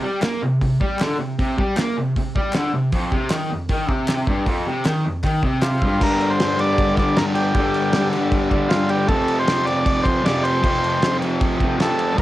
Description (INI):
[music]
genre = garage rock duo or trio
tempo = 156 BPM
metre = 4/4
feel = straight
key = unclear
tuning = A4 = 440 Hz
[part]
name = fuzz guitar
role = riff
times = 0.0-12.2 s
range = F2 to Bb3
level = -20 LUFS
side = equal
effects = distortion, cassette tape
[part]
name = cloth-damped thuddy drum kit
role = drums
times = 0.2-12.2 s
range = crash cymbal, hi-hat, kick drum, snare drum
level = -23 LUFS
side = equal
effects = cassette tape
[part]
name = group handclap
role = percussion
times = 0.2-5.7 s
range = none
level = -32 LUFS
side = left 1 dB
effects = none
[part]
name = combo organ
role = melody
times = 5.6-12.2 s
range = F4 to D5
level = -21 LUFS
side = equal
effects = none
[sound]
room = little or no reverb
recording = home recording on cassette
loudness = -17 LUFS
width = side -15 dB against mid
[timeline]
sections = 0.0-6.0 A section; 6.0-12.2 B section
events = none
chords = 0.0 C5; 2.9 F5; 6.0 G5; 9.1 F